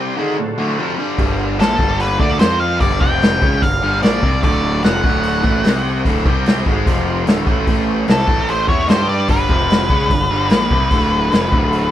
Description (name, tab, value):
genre	blues rock power trio and southern rock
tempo	148 BPM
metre	4/4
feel	straight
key	unclear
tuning	A4 = 440 Hz
part	overdriven tonewheel organ	sustained chords	0.0-11.9 s	D3 to A#5	-28 LUFS	right 2 dB	none
part	biting overdriven guitar	riff	0.0-11.9 s	D2 to G4	-19 LUFS	equal	none
part	fuzz picked electric bass	bass	1.2-11.9 s	D1 to G2	-21 LUFS	equal	overdrive
part	vintage drum kit	drums	1.2-11.8 s	hi-hat, kick drum, snare drum	-16 LUFS	equal	none
part	octave-fuzz lead guitar	melody	1.6-11.9 s	A4 to G5	-19 LUFS	left 1 dB	distortion
room	moderate stone room reverb, RT60 1.1 s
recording	band playing live in one room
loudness	-13 LUFS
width	side -12 dB against mid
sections	0.0-11.9 A section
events	none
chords	0.2 D7#9; 1.2 G7#9; 2.4 F5; 2.8 G7#9; 3.0 F5; 3.4 G7#9; 4.4 D7#9; 5.6 C5; 6.1 D7#9; 6.3 C5; 6.7 G#13b9; 6.9 F5; 7.3 D7#9; 7.7 A7#9; 8.9 G5; 9.3 G7#9; 9.5 F5; 9.9 G7#9; 10.9 D7#9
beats	0.37 0.78 | 1.19 1.59 2.00 2.40 | 2.81 3.22 3.62 4.03 | 4.43 4.84 5.24 5.65 | 6.05 6.46 6.86 7.27 | 7.67 8.08 8.48 8.89 | 9.29 9.70 10.10 10.51 | 10.91 11.32 11.72